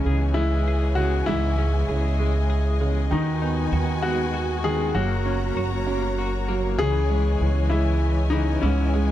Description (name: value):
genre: six-eight pop ballad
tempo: 65 BPM (dotted quarters)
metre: 6/8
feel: straight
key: unclear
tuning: A4 = 440 Hz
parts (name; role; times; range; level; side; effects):
- clear baby grand piano; melody; 0.0-9.1 s; C#4 to G#4; -27 LUFS; left 4 dB; tape echo
- warm upright piano; accompaniment; 0.0-9.1 s; G#2 to C#4; -28 LUFS; right 5 dB; none
- rich studio string section; sustained chords; 0.0-9.1 s; E3 to A#5; -31 LUFS; left 1 dB; none
- twelve-string electric guitar; arpeggios; 0.0-9.1 s; D#3 to G#4; -32 LUFS; left 7 dB; tremolo
- upright bass; bass; 0.1-9.1 s; F#1 to D#2; -23 LUFS; equal; none
room: light reverb, studio reverb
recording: dark, warm production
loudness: -20 LUFS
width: side -12 dB against mid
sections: 0.0-9.1 A section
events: none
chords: 0.0 C#madd9; 3.1 B6/D#; 4.9 F#; 6.8 C#madd9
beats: 0.36 | 1.27 2.19 | 3.11 4.03 | 4.95 5.87 | 6.79 7.71 | 8.63